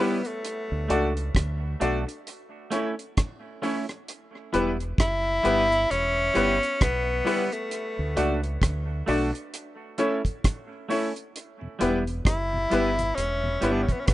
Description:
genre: roots reggae.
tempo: 66 BPM.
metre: 4/4.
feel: swing 58% on 16ths.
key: E dorian.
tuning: A4 = 442 Hz.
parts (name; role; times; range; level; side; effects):
clear tenor saxophone; melody; 0.0-14.1 s; A3 to E4; -26 LUFS; left 1 dB; dub echo.
semi-hollow electric guitar; accompaniment; 0.0-13.9 s; G3 to F#4; -32 LUFS; right 4 dB; dub echo.
clear upright piano; stabs; 0.0-13.8 s; B3 to D5; -27 LUFS; left 3 dB; none.
deep reggae drum kit; drums; 0.2-14.1 s; hi-hat, kick drum, rim click; -26 LUFS; equal; dub echo.
deep dub fingered electric bass; bass; 0.7-14.1 s; E1 to D2; -29 LUFS; equal; none.
tonewheel organ; accompaniment; 11.6-13.9 s; E2 to E4; -37 LUFS; equal; none.
room: small room ambience.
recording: rough home demo mix, nothing above 10.3 kHz.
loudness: -23 LUFS.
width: side -16 dB against mid.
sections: 0.0-14.1 A section.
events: none.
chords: 0.4 D; 2.3 A; 4.1 Em; 7.7 D; 9.5 A; 11.4 Em.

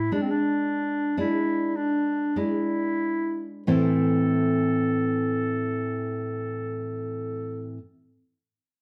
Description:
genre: romantic duo for clarinet and classical guitar.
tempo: 44-59 BPM.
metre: 4/4.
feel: rubato.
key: A minor.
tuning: A4 = 437 Hz.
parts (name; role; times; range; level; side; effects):
clear clarinet; melody; 0.0-7.8 s; C4 to A4; -30 LUFS; equal; none.
nylon-string guitar; accompaniment; 0.0-7.8 s; A2 to C5; -28 LUFS; equal; none.
room: moderate large studio reverb, RT60 0.9 s.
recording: band playing live in one room.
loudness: -26 LUFS.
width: mono.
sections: 0.0-3.7 A section; 3.7-8.5 B section.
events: slowing down 0.0-3.7.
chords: 0.0 E7/A; 3.7 Am.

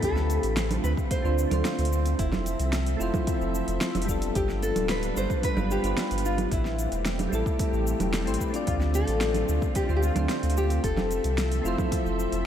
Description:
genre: sunset chillout.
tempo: 111 BPM.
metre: 4/4.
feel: straight.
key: unclear.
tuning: A4 = 440 Hz.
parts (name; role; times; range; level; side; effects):
nylon-string guitar; melody; 0.0-12.5 s; E4 to C5; -32 LUFS; left 2 dB; tape echo.
soft electric-piano-like synth keys; accompaniment; 0.0-12.5 s; G3 to D5; -32 LUFS; moving between left 4 dB and right 4 dB; chorus, auto-pan, diffuse ambient delay.
soft string machine; sustained chords; 0.0-12.5 s; D3 to E5; -33 LUFS; equal; ensemble chorus.
warm sub bass; bass; 0.0-12.4 s; D1 to D2; -28 LUFS; equal; none.
deep house drum kit; drums; 0.0-12.4 s; cabasa, congas, hi-hat, snare drum; -32 LUFS; right 2 dB; studio reverb.
electronic kick drum; drums; 0.0-12.0 s; none; -29 LUFS; equal; studio reverb.
room: moderate cathedral reverb, RT60 5.1 s.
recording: dreamy mix soaked in reverb.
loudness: -24 LUFS.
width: side -10 dB against mid.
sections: 0.0-12.5 A section.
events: none.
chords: 0.0 Dm7; 2.2 Fmaj7; 4.4 G7; 6.5 Am7; 8.7 Dm7; 10.8 Fmaj7.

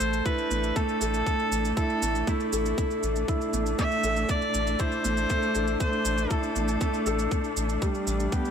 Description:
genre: piano and strings electronica.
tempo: 119 BPM.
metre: 4/4.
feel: straight.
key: A minor.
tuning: A4 = 440 Hz.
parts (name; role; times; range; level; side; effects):
warm viola; melody; 0.0-8.5 s; E4 to E5; -30 LUFS; equal; tape echo.
muted string quartet; sustained chords; 0.0-8.5 s; A3 to D4; -35 LUFS; left 3 dB; sidechain pumping.
dark baby grand piano; riff; 0.0-8.5 s; G3 to A4; -29 LUFS; right 2 dB; tape echo.
round analog bass; bass; 0.0-8.3 s; A1; -30 LUFS; equal; sidechain pumping.
shaker; drums; 0.0-8.5 s; none; -37 LUFS; right 5 dB; none.
electronic kick drum; drums; 0.3-8.4 s; none; -29 LUFS; left 1 dB; none.
room: light reverb, small room ambience.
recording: none.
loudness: -24 LUFS.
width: side -8 dB against mid.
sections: 0.0-8.5 A section.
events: none.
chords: 0.0 Am; 7.8 Gadd9.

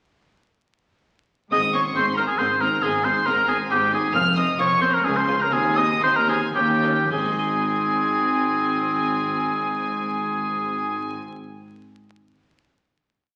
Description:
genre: classical, baroque-style concerto movement with solo episodes.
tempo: 103-138 BPM.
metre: 3/4.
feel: straight.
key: Ab major.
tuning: A4 = 440 Hz.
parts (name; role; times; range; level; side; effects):
rich chamber violin section; melody; 1.5-11.2 s; G5 to F6; -33 LUFS; equal; none.
warm oboe; melody; 1.5-11.2 s; G4 to F5; -24 LUFS; equal; none.
rich chamber violin section; second line; 1.5-11.2 s; G5 to F6; -34 LUFS; equal; none.
dark chamber viola section; accompaniment; 1.5-11.2 s; C4 to Db4; -33 LUFS; equal; none.
harpsichord; accompaniment; 1.5-11.4 s; Db2 to Eb5; -34 LUFS; equal; none.
rich chamber cello section; bass; 1.5-11.2 s; Db2 to Ab2; -32 LUFS; equal; none.
rich chamber double bass section; bass; 1.5-11.2 s; F1 to Eb2; -36 LUFS; equal; none.
room: wet recital hall reverb, RT60 1.5 s.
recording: very old 78 rpm record, vinyl crackle.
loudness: -22 LUFS.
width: mono.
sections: 1.5-7.1 ritornello; 7.1-10.6 final chord.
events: slowing down 3.5-7.1.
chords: 1.5 Ab; 4.1 F5; 5.0 Db; 5.5 Abadd9/Eb; 6.5 Eb7; 7.1 Ab.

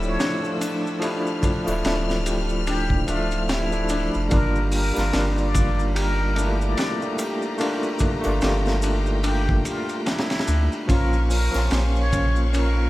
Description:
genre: trip hop.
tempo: 73 BPM.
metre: 4/4.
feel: swing 58% on 16ths.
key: unclear.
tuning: A4 = 442 Hz.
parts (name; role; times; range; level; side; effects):
trumpet with plunger mute; melody; 0.0-12.9 s; E4 to D5; -30 LUFS; equal; tape echo.
overdriven tine electric piano; accompaniment; 0.0-12.9 s; F3 to E5; -26 LUFS; equal; tremolo, vintage 12-bit sampler grit, tape echo.
clear studio string section; sustained chords; 0.0-12.9 s; Bb3 to F6; -34 LUFS; left 2 dB; vintage 12-bit sampler grit.
felt-muted upright piano; arpeggios; 0.0-12.9 s; Db4 to G4; -31 LUFS; left 2 dB; tape echo.
warm sub bass; bass; 0.0-12.9 s; D1 to D2; -23 LUFS; equal; none.
maracas and triangle; percussion; 0.0-12.7 s; none; -39 LUFS; right 2 dB; none.
crunchy breakbeat drum kit; drums; 0.2-12.8 s; hi-hat, kick drum, ride cymbal, snare drum; -27 LUFS; equal; none.
room: small room ambience.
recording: rough home demo mix.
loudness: -20 LUFS.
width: side -17 dB against mid.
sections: 0.0-12.9 A section.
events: none.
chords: 0.0 Dmadd9; 4.3 Gm7; 10.9 Bbm.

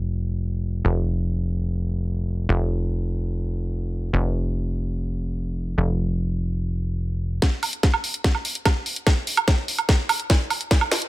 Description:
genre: psychedelic trance.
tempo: 146 BPM.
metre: 4/4.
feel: straight.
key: unclear.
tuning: A4 = 440 Hz.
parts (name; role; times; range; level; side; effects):
plucky analog bass; bass; 0.0-7.4 s; F1; -23 LUFS; equal; none.
electronic kick drum; drums; 7.4-10.8 s; none; -18 LUFS; equal; studio reverb.
garage drum kit; drums; 7.4-11.1 s; hi-hat, snare drum, woodblock; -22 LUFS; right 2 dB; high-pass filter on snare, studio reverb, high-pass filter on hats, high-pass filter on perc.
room: little or no reverb.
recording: none.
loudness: -21 LUFS.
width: side -17 dB against mid.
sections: 0.0-7.4 A section; 7.4-11.1 B section.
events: build-up 7.4-11.1; drum fill 7.4-11.1.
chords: none.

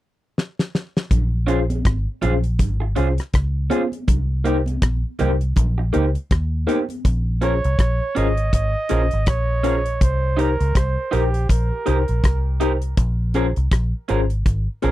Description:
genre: lovers rock reggae.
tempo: 81 BPM.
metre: 4/4.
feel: swing 58% on 16ths.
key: Bb dorian.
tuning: A4 = 440 Hz.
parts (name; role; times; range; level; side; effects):
damped 70s drum kit; drums; 0.4-14.9 s; hi-hat, kick drum, rim click, snare drum; -19 LUFS; equal; none.
vintage muted fingered electric bass; bass; 1.1-14.9 s; Ab1 to Eb2; -20 LUFS; equal; none.
congas; percussion; 1.1-7.0 s; none; -30 LUFS; right 4 dB; none.
mellow tine electric piano; accompaniment; 1.5-14.9 s; Db4 to C5; -23 LUFS; left 4 dB; medium stereo tremolo.
electric guitar through a small old amp; stabs; 1.5-14.9 s; Bb3 to Bb4; -24 LUFS; right 5 dB; none.
warm flugelhorn; melody; 7.4-12.6 s; G4 to Eb5; -25 LUFS; right 4 dB; tape echo.
room: little or no reverb.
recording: dry, close 1970s-style studio recording.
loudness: -18 LUFS.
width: side -15 dB against mid.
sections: 0.0-1.1 A section; 1.1-7.0 B section; 7.0-14.9 C section.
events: drum fill 0.4-1.1.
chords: 0.0 N.C.; 1.1 Bbm7; 4.1 Cm7; 7.0 Bbm7; 10.0 Cm7; 13.0 Bbm7.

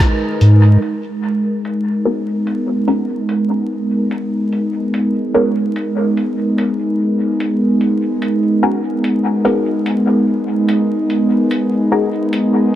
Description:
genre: ambient dub.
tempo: 73 BPM.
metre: 4/4.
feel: swing 53% on 16ths.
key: G# minor.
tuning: A4 = 443 Hz.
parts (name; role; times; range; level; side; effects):
airy breathy pad; sustained chords; 0.0-12.8 s; G#3 to B4; -15 LUFS; equal; chorus.
lo-fi sampler-style drum kit; drums; 0.0-12.5 s; hi-hat, rim click; -27 LUFS; equal; low-pass filter on hats, low-pass filter on snare, low-pass filter on room, dub echo.
soft dub sub bass; bass; 0.4-0.8 s; G#2; -7 LUFS; equal; none.
filtered dub chord stab; stabs; 2.1-12.1 s; B3 to A#4; -20 LUFS; left 2 dB; phaser, analog chorus, dub echo.
room: moderate concert hall reverb, RT60 2.2 s.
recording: dark, warm production, vinyl crackle.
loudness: -14 LUFS.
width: side -12 dB against mid.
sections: 0.8-12.8 A section.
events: band accent 0.0-0.4; filter sweep on analog synth pad 0.8-12.8.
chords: 0.0 G#madd9.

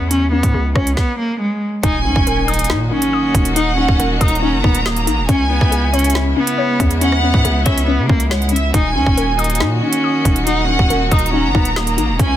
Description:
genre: hip hop, drill.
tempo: 139 BPM.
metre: 4/4.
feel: half-time.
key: Eb phrygian.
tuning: A4 = 438 Hz.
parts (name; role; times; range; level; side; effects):
clear cello; melody; 0.0-12.4 s; Ab3 to Eb4; -20 LUFS; equal; low-pass filter.
warbly dusty pluck; accompaniment; 0.0-12.4 s; Db4 to Eb6; -22 LUFS; left 7 dB; chorus, low-pass filter.
warm chamber string section; sustained chords; 0.0-12.4 s; Db3 to Gb4; -25 LUFS; right 1 dB; none.
distorted 808-style bass; bass; 0.0-12.4 s; Db1 to Db3; -19 LUFS; equal; distortion.
drill drum kit; drums; 0.1-12.3 s; hi-hat, kick drum, rim click, snare drum; -17 LUFS; right 1 dB; none.
warm studio violin section; second line; 1.8-12.4 s; Fb5 to Bb5; -22 LUFS; right 2 dB; ping-pong delay.
impact; sound effects; 2.0-3.6 s; none; -27 LUFS; right 1 dB; none.
room: small room ambience.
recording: dense, heavily limited modern master.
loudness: -13 LUFS.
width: side -12 dB against mid.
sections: 0.0-1.8 A section; 1.8-12.4 B section.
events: stop 1.0-1.8; impact 1.8-3.6.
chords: 0.0 Dbm7; 1.8 Ebm; 5.3 Dbm7; 8.7 Ebm.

